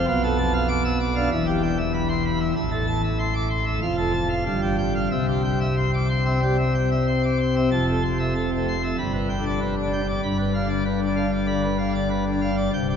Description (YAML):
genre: classical, organ toccata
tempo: 96 BPM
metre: 4/4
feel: straight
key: unclear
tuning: A4 = 436 Hz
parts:
  - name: pipe organ, plenum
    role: solo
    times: 0.0-13.0 s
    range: C1 to E6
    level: -20 LUFS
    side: equal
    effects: none
room: wet cathedral reverb, RT60 5.8 s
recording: recorded in a church or concert hall, nothing above 7.5 kHz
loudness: -20 LUFS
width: side -7 dB against mid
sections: 0.0-7.7 A section; 7.7-13.0 B section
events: none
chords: 0.1 Bm7b5; 1.3 Em; 2.6 Am; 3.8 F; 4.5 Fsus2/G; 5.1 C; 7.7 Fmaj7; 9.0 G; 10.2 G7